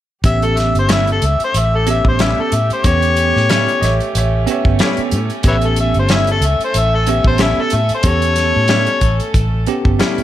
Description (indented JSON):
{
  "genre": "straight-eighth soul blues",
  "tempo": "92 BPM",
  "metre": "4/4",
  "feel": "swing 56% on 16ths",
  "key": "A mixolydian",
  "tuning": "A4 = 440 Hz",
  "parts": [
    { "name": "bell-like tine electric piano", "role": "accompaniment", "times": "0.2-10.2 s", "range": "B3 to G4", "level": "-21 LUFS", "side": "right 4 dB", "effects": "medium stereo tremolo" },
    { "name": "rich chamber string section", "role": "sustained chords", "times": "0.2-10.2 s", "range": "A3 to A4", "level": "-26 LUFS", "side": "right 2 dB", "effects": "none" },
    { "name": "vintage muted fingered electric bass", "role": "bass", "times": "0.2-10.2 s", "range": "G1 to A2", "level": "-17 LUFS", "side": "equal", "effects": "none" },
    { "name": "warm soul drum kit", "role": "drums", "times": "0.2-10.2 s", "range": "hi-hat, kick drum, snare drum", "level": "-18 LUFS", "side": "equal", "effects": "none" },
    { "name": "overdriven harmonica", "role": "melody", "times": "0.3-9.3 s", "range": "A4 to E5", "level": "-17 LUFS", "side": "left 3 dB", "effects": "none" },
    { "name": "direct-recorded clean electric guitar", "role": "stabs", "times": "0.9-10.2 s", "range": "A2 to E4", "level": "-23 LUFS", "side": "left 6 dB", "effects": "none" },
    { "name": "clear upright piano", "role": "second line", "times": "3.8-5.3 s", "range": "A4 to E5", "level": "-23 LUFS", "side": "right 6 dB", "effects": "none" }
  ],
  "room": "light reverb, small room ambience",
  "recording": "none",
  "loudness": "-12 LUFS",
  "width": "side -12 dB against mid",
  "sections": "0.2-10.2 A section",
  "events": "none",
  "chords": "0.2 A7"
}